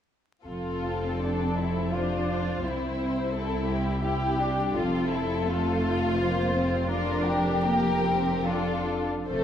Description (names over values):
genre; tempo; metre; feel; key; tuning
classical, slow romantic movement for string orchestra; 69-88 BPM; 3/4; rubato; F major; A4 = 442 Hz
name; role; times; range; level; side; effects
warm symphonic violin section; melody; 0.5-9.4 s; G4 to C5; -33 LUFS; left 4 dB; none
warm symphonic violin section; second line; 0.5-9.4 s; A3 to A4; -30 LUFS; left 1 dB; none
rich studio viola section; accompaniment; 0.5-9.4 s; A3 to A4; -31 LUFS; equal; none
rich symphonic double bass section; bass; 0.5-9.4 s; F1 to C2; -32 LUFS; right 1 dB; none
warm studio cello section; bass; 0.5-9.4 s; C2 to F2; -32 LUFS; right 1 dB; none
room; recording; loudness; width
moderate scoring stage reverb, RT60 1.7 s; vinyl crackle; -24 LUFS; side -9 dB against mid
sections
0.5-9.3 A section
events
none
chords
0.5 F; 2.7 C; 4.7 F; 6.9 Bb/F